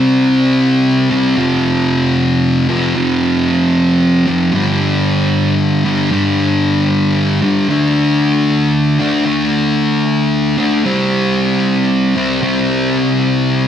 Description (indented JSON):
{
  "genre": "rock",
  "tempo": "114 BPM",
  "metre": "3/4",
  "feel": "straight",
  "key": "unclear",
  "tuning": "A4 = 440 Hz",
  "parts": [
    { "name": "thick fuzz guitar", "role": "solo", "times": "0.0-13.7 s", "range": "F2 to D4", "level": "-12 LUFS", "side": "equal", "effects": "distortion, tape echo" }
  ],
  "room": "wet large studio reverb, RT60 1.2 s",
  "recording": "dark, warm production",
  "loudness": "-12 LUFS",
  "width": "side -9 dB against mid",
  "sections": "0.0-4.5 A section; 4.5-13.7 B section",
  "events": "none",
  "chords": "0.0 C5; 1.4 F5; 4.5 G5; 7.7 D5; 10.8 C5"
}